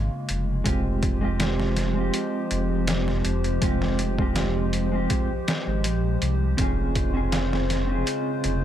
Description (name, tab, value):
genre	trip hop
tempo	81 BPM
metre	4/4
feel	straight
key	F minor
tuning	A4 = 440 Hz
part	warbly tape-like pad	sustained chords	0.0-8.6 s	Db3 to C5	-29 LUFS	left 1 dB	chorus, built-in reverb, vintage 12-bit sampler grit
part	dark detuned saw bass	bass	0.0-8.6 s	F1 to C2	-26 LUFS	equal	none
part	trip hop sampler-style drum kit	drums	0.3-8.6 s	hi-hat, kick drum, snare drum	-27 LUFS	equal	overdrive
part	mellow electric guitar	accompaniment	0.6-8.6 s	Ab3 to Ab4	-28 LUFS	right 3 dB	tremolo, tape echo
room	little or no reverb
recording	none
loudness	-22 LUFS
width	side -11 dB against mid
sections	0.0-8.6 A section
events	none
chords	0.0 Db; 0.7 Fmadd9; 6.6 Dbmaj7/F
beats	| 0.67 1.41 2.15 2.89 | 3.63 4.37 5.11 5.85 | 6.59 7.33 8.07